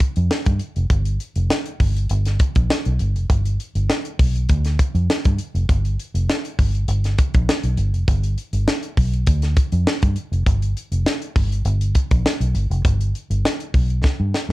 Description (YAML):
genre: funk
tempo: 100 BPM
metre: 4/4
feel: straight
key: G mixolydian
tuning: A4 = 443 Hz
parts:
  - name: tight funk drum kit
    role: drums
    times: 0.0-14.5 s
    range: hi-hat, kick drum, snare drum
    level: -19 LUFS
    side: equal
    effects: none
  - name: vintage muted fingered electric bass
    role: bass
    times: 0.2-14.5 s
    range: F1 to G2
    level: -19 LUFS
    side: equal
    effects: none
room: little or no reverb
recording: dark, warm production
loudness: -17 LUFS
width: side -18 dB against mid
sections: 0.0-14.5 A section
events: drum fill 14.0-14.5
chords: none